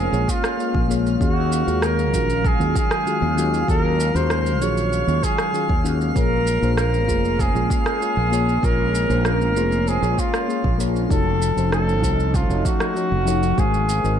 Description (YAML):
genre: sunset chillout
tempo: 97 BPM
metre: 4/4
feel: straight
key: Bb minor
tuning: A4 = 444 Hz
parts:
  - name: warm flugelhorn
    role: melody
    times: 0.0-14.2 s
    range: F4 to Db5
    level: -23 LUFS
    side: equal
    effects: vintage 12-bit sampler grit, ping-pong delay
  - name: mellow FM electric piano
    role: accompaniment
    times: 0.0-14.2 s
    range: Eb3 to F5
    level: -26 LUFS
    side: moving between left 9 dB and right 4 dB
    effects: chorus, auto-pan
  - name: lush unison pad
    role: sustained chords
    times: 0.0-14.2 s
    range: C3 to F5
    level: -28 LUFS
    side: left 1 dB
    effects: chorus
  - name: fretless electric bass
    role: bass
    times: 0.0-14.2 s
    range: F1 to Eb2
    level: -22 LUFS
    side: equal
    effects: none
  - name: drifting glass-harmonics texture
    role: texture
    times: 0.0-14.2 s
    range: F5 to F6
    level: -34 LUFS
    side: right 3 dB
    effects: chorus, built-in reverb
  - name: electronic shaker and rim click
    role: drums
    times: 0.1-14.2 s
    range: none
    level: -29 LUFS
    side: right 1 dB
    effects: overdrive
  - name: electronic kick drum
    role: drums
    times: 0.3-13.7 s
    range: none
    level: -22 LUFS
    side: equal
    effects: overdrive
room: moderate lush hall reverb, RT60 2.1 s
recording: dark, warm production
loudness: -18 LUFS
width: side -9 dB against mid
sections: 0.0-14.2 A section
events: none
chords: 0.0 Bbm7; 1.2 Ebm11; 6.2 Bbm7; 11.1 F7b9b13; 13.6 Ab13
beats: 0.59 | 1.21 1.83 2.45 3.06 | 3.68 4.30 4.92 5.54 | 6.16 6.78 7.39 8.01 | 8.63 9.25 9.87 10.49 | 11.11 11.72 12.34 12.96 | 13.58